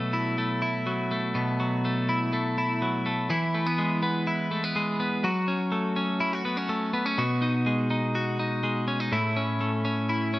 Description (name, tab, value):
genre	indie pop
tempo	124 BPM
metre	4/4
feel	straight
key	E major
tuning	A4 = 440 Hz
part	twelve-string electric guitar	solo	0.0-10.4 s	A2 to F#4	-24 LUFS	equal	none
room	moderate lush hall reverb, RT60 2.3 s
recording	rough home demo mix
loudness	-24 LUFS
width	side -18 dB against mid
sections	0.0-3.3 A section; 3.3-10.4 B section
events	none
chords	0.0 B7sus4; 3.3 E; 5.2 F#m; 7.2 B6; 9.1 A